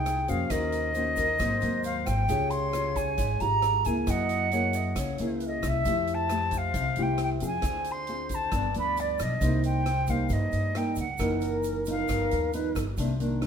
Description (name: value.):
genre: bossa nova.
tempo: 135 BPM.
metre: 4/4.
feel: straight.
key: F minor.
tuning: A4 = 442 Hz.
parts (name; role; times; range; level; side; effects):
silver concert flute; melody; 0.0-12.5 s; D5 to C6; -29 LUFS; equal; none.
alto flute; second line; 0.0-12.9 s; Ab4 to Eb5; -35 LUFS; left 2 dB; none.
bell-like tine electric piano; accompaniment; 0.0-4.1, 11.2-13.5 s; D4 to F5; -38 LUFS; right 7 dB; none.
nylon-string guitar; accompaniment; 0.0-13.5 s; Gb2 to Ab4; -32 LUFS; equal; none.
upright bass; bass; 0.0-13.5 s; Gb1 to G2; -31 LUFS; equal; none.
swinging big-band drum kit; drums; 0.1-13.5 s; hi-hat, kick drum, rim click; -37 LUFS; equal; none.
egg shaker; percussion; 0.1-13.4 s; none; -47 LUFS; right 5 dB; none.
room: light reverb.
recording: minimal, uncompressed stereo recording.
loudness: -25 LUFS.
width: side -7 dB against mid.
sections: 0.0-13.0 A section.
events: none.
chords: 0.0 Fm9; 0.5 Ebm7; 1.4 Ab9; 2.3 Dbmaj7#11; 4.1 Gb9; 5.9 Fmaj9; 7.6 Dm7b5; 8.5 G7; 9.4 Cm7; 11.2 Gb6; 12.1 G7alt.